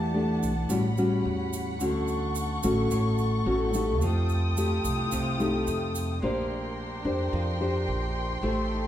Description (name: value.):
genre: bossa nova.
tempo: 109 BPM.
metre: 4/4.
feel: straight.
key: Bb major.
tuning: A4 = 440 Hz.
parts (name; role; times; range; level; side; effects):
nylon-string guitar; accompaniment; 0.0-8.9 s; A2 to C5; -27 LUFS; left 1 dB; none.
dark chamber string section; sustained chords; 0.0-8.9 s; C#4 to Eb6; -34 LUFS; left 1 dB; none.
upright bass; bass; 0.0-8.9 s; A1 to F2; -30 LUFS; right 1 dB; none.
egg shaker; percussion; 0.4-6.2 s; none; -41 LUFS; right 6 dB; none.
room: wet recital hall reverb, RT60 1.8 s.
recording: recorded in a church or concert hall.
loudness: -25 LUFS.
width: side -11 dB against mid.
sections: 0.0-6.2 A section; 6.2-8.9 B section.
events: none.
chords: 0.0 Em11; 0.7 A13; 1.8 Dmaj7; 4.0 F9; 6.2 Bb69.